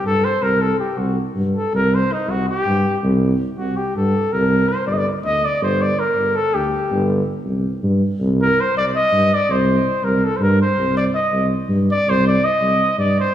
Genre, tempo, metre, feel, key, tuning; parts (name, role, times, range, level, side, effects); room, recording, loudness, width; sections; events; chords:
balkan folk; 325 BPM (eighths); 7/8; straight; C dorian sharp4; A4 = 440 Hz
warm trumpet; melody; 0.0-13.3 s; Eb4 to Eb5; -18 LUFS; equal
mellow tuba; bass; 0.0-13.2 s; G1 to G2; -19 LUFS; equal
wet concert hall reverb, RT60 2.3 s; recorded in a church or concert hall, small room ambience; -16 LUFS; side -10 dB against mid
0.0-13.3 A section
trumpet solo 0.0-13.3
0.0 C5; 4.9 G5; 7.5 Cm